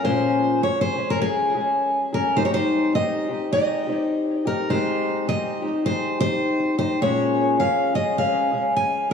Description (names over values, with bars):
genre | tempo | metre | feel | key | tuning
folk | 103 BPM | 4/4 | swing 60% on 8ths | Ab major | A4 = 439 Hz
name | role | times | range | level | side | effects
picked steel-string acoustic guitar | melody | 0.0-9.1 s | Ab4 to Ab5 | -23 LUFS | right 1 dB | tape echo
fingerpicked twelve-string acoustic guitar | accompaniment | 0.0-9.1 s | Bb2 to Ab4 | -22 LUFS | left 2 dB | none
room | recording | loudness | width
wet plate reverb, RT60 2.4 s | dreamy mix soaked in reverb, small room reverb | -20 LUFS | side -6 dB against mid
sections
0.0-9.1 A section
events
none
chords
0.0 Bbm7; 2.4 Abmaj7; 7.0 Bbm7